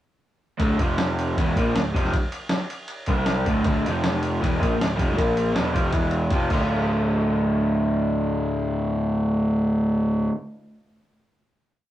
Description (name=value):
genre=garage rock duo or trio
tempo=157 BPM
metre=4/4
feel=straight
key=D minor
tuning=A4 = 436 Hz
part: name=crunchy overdriven guitar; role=riff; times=0.6-10.3 s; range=D2 to F4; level=-22 LUFS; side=equal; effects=spring reverb
part: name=fuzz picked electric bass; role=bass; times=0.6-10.3 s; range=D1 to C2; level=-27 LUFS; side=equal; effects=overdrive
part: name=lo-fi sampler-style drum kit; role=drums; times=0.6-6.6 s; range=crash cymbal, kick drum, ride cymbal, snare drum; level=-25 LUFS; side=equal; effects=none
room=moderate studio reverb, RT60 0.6 s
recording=rough rehearsal-room recording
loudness=-20 LUFS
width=side -13 dB against mid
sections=0.6-6.7 riff; 6.7-9.8 final hit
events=kick and snare drop out 6.3-6.7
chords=0.6 D5; 0.8 F5; 1.4 Dm; 3.1 C5; 3.5 D5; 3.8 F5; 4.4 Dm; 5.2 Bb5; 5.5 Cadd11/E; 5.9 E5; 6.3 F5; 6.5 Dm